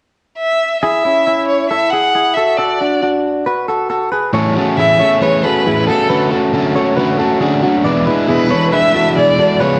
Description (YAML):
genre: indie pop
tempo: 137 BPM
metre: 4/4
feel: straight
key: A major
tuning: A4 = 440 Hz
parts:
  - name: rich violin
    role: melody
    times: 0.4-9.8 s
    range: A4 to F#5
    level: -16 LUFS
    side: equal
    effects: none
  - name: direct-recorded clean electric guitar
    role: arpeggios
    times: 0.8-9.8 s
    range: C#4 to D5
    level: -19 LUFS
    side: equal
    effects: lush chorus, slapback echo
  - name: overdriven semi-hollow guitar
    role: accompaniment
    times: 4.3-9.8 s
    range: E2 to G#4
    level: -17 LUFS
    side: equal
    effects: none
room: wet spring reverb, RT60 1.4 s, studio ambience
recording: worn, warbling old tape, cassette tape, vinyl crackle, warbly pitch drift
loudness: -14 LUFS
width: mono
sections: 0.8-4.3 A section; 4.3-9.8 B section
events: none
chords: 0.0 N.C.; 0.8 Amaj7; 2.6 D; 4.3 Amaj7; 6.1 Dmaj7; 7.8 E7